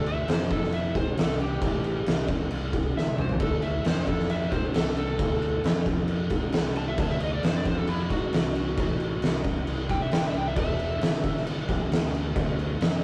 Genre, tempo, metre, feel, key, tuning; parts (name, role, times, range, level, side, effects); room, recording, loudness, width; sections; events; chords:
blues rock power trio and southern rock; 134 BPM; 4/4; straight; A4 = 440 Hz
overdriven slide guitar; melody; 0.0-11.4 s; E4 to A5; -35 LUFS; equal; analog delay
fuzz fingered electric bass; bass; 0.0-13.0 s; E1 to G#2; -33 LUFS; equal; overdrive
oversized low-tuned drum kit; drums; 0.1-12.9 s; crash cymbal, kick drum, snare drum, toms; -28 LUFS; equal
light reverb; rough rehearsal-room recording, warm saturation; -27 LUFS; mono
0.0-13.0 A section
electric slide guitar solo 0.0-13.0; drum fill 3.0-3.4
0.0 Dm7; 1.6 Am7; 3.4 Dm7; 8.8 Am; 10.6 Em7; 12.4 Dm